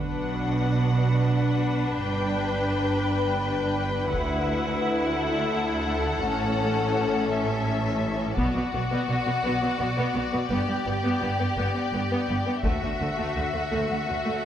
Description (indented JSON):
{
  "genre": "cinematic, epic orchestral film score",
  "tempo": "56 BPM (dotted quarters)",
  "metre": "6/8",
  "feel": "straight",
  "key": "B minor",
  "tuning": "A4 = 440 Hz",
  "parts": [
    { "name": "warm symphonic violin section", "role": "melody", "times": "0.0-14.4 s", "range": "D5 to G5", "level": "-33 LUFS", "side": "left 5 dB", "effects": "none" },
    { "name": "clear symphonic violin section", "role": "second line", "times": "0.0-14.4 s", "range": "F#4 to B4", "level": "-29 LUFS", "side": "left 3 dB", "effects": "none" },
    { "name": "rich symphonic viola section", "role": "accompaniment", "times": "0.0-14.4 s", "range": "A3 to E4", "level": "-29 LUFS", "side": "equal", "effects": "none" },
    { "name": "clear symphonic double bass section", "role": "bass", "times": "0.0-14.2 s", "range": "G1 to D2", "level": "-30 LUFS", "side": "right 2 dB", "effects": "none" },
    { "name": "rich symphonic cello section", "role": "bass", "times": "0.0-14.3 s", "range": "D2 to B2", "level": "-30 LUFS", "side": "right 2 dB", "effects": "none" },
    { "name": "taiko ensemble", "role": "drums", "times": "4.1-14.0 s", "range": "none", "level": "-32 LUFS", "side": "equal", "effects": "none" }
  ],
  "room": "moderate scoring stage reverb, RT60 1.9 s",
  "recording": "none",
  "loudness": "-23 LUFS",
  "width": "side -10 dB against mid",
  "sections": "0.0-14.4 A section",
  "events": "build-up 0.0-14.4",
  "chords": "0.0 Bm; 2.0 G; 4.1 Dadd9; 6.3 A; 8.4 Bm; 10.5 G; 12.6 Dadd9"
}